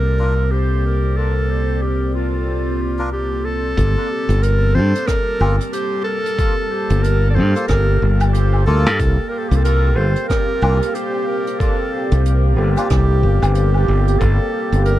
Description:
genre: ambient dub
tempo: 92 BPM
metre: 4/4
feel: swing 59% on 16ths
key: G minor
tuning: A4 = 440 Hz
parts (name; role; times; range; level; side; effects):
- clear clarinet; melody; 0.0-15.0 s; F4 to D5; -22 LUFS; equal; dub echo
- deep dark ambient pad; sustained chords; 0.0-15.0 s; G3 to A5; -25 LUFS; right 1 dB; chorus, built-in reverb
- modern bright fingered electric bass; bass; 0.0-15.0 s; G1 to G2; -16 LUFS; equal; none
- melodica; stabs; 0.2-12.9 s; Bb3 to Bb4; -32 LUFS; left 2 dB; dub echo
- electronic kick drum; drums; 3.8-14.4 s; none; -20 LUFS; equal; none
- jazz brush drum kit; drums; 3.8-15.0 s; hi-hat, rim click, woodblock; -28 LUFS; equal; dub echo
room: little or no reverb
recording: echo-heavy mix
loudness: -15 LUFS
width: side -14 dB against mid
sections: 0.0-3.8 A section; 3.8-15.0 B section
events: none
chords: 0.0 C7sus4; 3.8 Gm9; 9.0 C7sus4; 14.2 Gm9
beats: 0.51 | 1.17 1.82 2.47 3.12 | 3.77 4.43 5.08 5.73 | 6.38 7.04 7.69 8.34 | 8.99 9.64 10.30 10.95 | 11.60 12.25 12.91 13.56 | 14.21 14.86

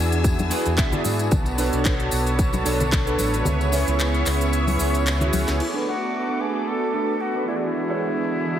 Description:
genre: nu-disco, nu disco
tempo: 112 BPM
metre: 4/4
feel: swing 55% on 16ths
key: B dorian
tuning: A4 = 444 Hz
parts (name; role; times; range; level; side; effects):
- warm analog pad; accompaniment; 0.0-8.6 s; E3 to D5; -25 LUFS; right 1 dB; chorus, sidechain pumping, ping-pong delay
- clear studio string section; sustained chords; 0.0-8.6 s; D3 to E6; -31 LUFS; left 2 dB; sidechain pumping, low-pass filter
- fingered electric bass; bass; 0.0-5.6 s; A1 to G#2; -24 LUFS; equal; none
- mellow electric guitar; riff; 0.1-8.6 s; C#4 to G#5; -29 LUFS; right 2 dB; analog chorus, low-pass filter, ping-pong delay
- house drum kit; drums; 0.1-5.7 s; crash cymbal, handclaps, hi-hat, shaker, snare drum, toms; -29 LUFS; left 1 dB; none
- tambourine and congas; percussion; 0.1-5.6 s; none; -31 LUFS; left 2 dB; none
- electronic kick drum; drums; 0.2-3.0 s; none; -22 LUFS; equal; none
- silver concert flute; melody; 5.6-8.6 s; E4 to A4; -27 LUFS; equal; ping-pong delay
room: moderate lush hall reverb, RT60 2.0 s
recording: heavily compressed radio sound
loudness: -20 LUFS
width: side -10 dB against mid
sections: 0.0-5.6 A section; 5.6-8.6 B section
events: filter sweep on analog synth pad 0.0-5.6; clean electric guitar fill 0.2-1.3; kick drops out 3.5-5.6; drum fill 5.3; filter sweep on clean electric guitar 5.6-8.6; filter sweep on string section 5.6-8.6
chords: 0.0 E7; 1.3 Bm7; 3.5 C#m7; 5.6 Bm7; 7.5 E7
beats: 0.24 0.78 | 1.31 1.85 2.39 2.92 | 3.46 3.99 4.53 5.07 | 5.60 6.14 6.67 7.21 | 7.74 8.28

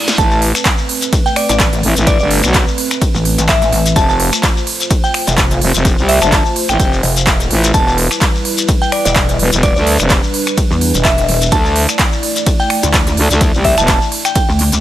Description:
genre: bass house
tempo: 127 BPM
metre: 4/4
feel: swing 56% on 16ths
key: A minor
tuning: A4 = 440 Hz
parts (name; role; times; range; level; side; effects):
- dark analog pad; sustained chords; 0.0-14.8 s; G3 to D5; -22 LUFS; equal; chorus, sidechain pumping
- big-room dance drum kit; drums; 0.1-14.8 s; finger snaps, handclaps, hi-hat, ride cymbal, snare drum; -18 LUFS; right 2 dB; none
- shekere; percussion; 0.1-14.8 s; none; -21 LUFS; left 5 dB; none
- glassy synth bell; melody; 0.2-14.4 s; D5 to A5; -17 LUFS; equal; chorus, digital delay
- growling FM bass; bass; 0.2-14.0 s; E1 to D2; -14 LUFS; equal; tube saturation, sidechain pumping
- electronic kick drum; drums; 0.2-14.5 s; none; -14 LUFS; equal; none
- pulsing pluck wobble bass; bass; 1.5-14.8 s; E1 to E2; -15 LUFS; equal; chorus, overdrive, sidechain pumping
room: light reverb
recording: none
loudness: -10 LUFS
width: side -13 dB against mid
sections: 0.0-14.8 A section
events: break 0.0; drum fill 0.0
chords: 0.2 Amadd9; 4.0 F; 7.7 Em; 11.5 Dsus2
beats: | 0.18 0.66 1.13 1.60 | 2.07 2.54 3.02 3.49 | 3.96 4.43 4.91 5.38 | 5.85 6.32 6.80 7.27 | 7.74 8.21 8.69 9.16 | 9.63 10.10 10.58 11.05 | 11.52 11.99 12.47 12.94 | 13.41 13.88 14.36

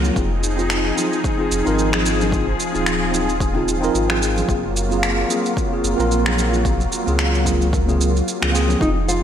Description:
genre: sunset chillout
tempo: 111 BPM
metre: 4/4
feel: swing 56% on 16ths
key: unclear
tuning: A4 = 441 Hz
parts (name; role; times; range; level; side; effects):
- tine electric piano; accompaniment; 0.0-9.0 s; Bb3 to Bb4; -22 LUFS; right 1 dB; medium stereo tremolo, auto-pan, ping-pong delay, slapback echo
- lush unison pad; sustained chords; 0.0-9.2 s; F3 to Ab4; -23 LUFS; left 1 dB; chorus, phaser
- warm sub bass; bass; 0.0-9.2 s; Eb1 to Db2; -22 LUFS; equal; tube saturation
- electronic shaker and finger snaps; drums; 0.0-9.2 s; none; -25 LUFS; right 1 dB; overdrive, slapback echo
- congas; percussion; 0.0-8.8 s; none; -31 LUFS; right 2 dB; slapback echo
- electronic kick drum; drums; 0.2-8.9 s; none; -24 LUFS; equal; overdrive
- nylon-string guitar; melody; 8.8-9.2 s; Eb4 to F4; -20 LUFS; equal; vintage 12-bit sampler grit, slapback echo
room: moderate lush hall reverb, RT60 2.0 s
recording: big arena sound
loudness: -16 LUFS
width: side -9 dB against mid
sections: 0.0-9.2 A section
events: none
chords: 0.2 Fm7; 4.5 Gbmaj9#11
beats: | 0.16 0.70 1.24 1.78 | 2.32 2.86 3.40 3.94 | 4.49 5.03 5.57 6.11 | 6.65 7.19 7.73 8.27 | 8.81

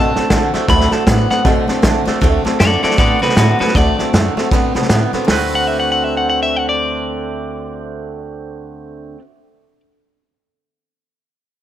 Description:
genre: rockabilly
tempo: 157 BPM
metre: 4/4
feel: swing 61% on 8ths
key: D mixolydian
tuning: A4 = 441 Hz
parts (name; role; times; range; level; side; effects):
- electric guitar at the edge of break-up; melody; 0.0-9.8 s; F#4 to B5; -18 LUFS; left 2 dB; tape echo
- picked steel-string acoustic guitar; accompaniment; 0.0-9.3 s; D3 to F#4; -22 LUFS; left 5 dB; none
- twangy electric guitar; riff; 0.0-9.2 s; D3 to B4; -21 LUFS; right 8 dB; spring reverb
- upright bass; bass; 0.0-9.1 s; D2 to D3; -20 LUFS; equal; none
- vintage drum kit; drums; 0.2-5.4 s; hi-hat, kick drum, snare drum; -16 LUFS; equal; none
room: little or no reverb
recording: none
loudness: -12 LUFS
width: side -11 dB against mid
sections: 0.0-2.2 A section; 2.2-5.3 B section; 5.3-8.3 C section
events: none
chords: 0.0 D7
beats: 0.32 | 0.70 1.08 1.46 1.84 | 2.22 2.60 2.99 3.37 | 3.75 4.13 4.51 4.90 | 5.28 5.66 6.04 6.43 | 6.81 7.19 7.57 7.96

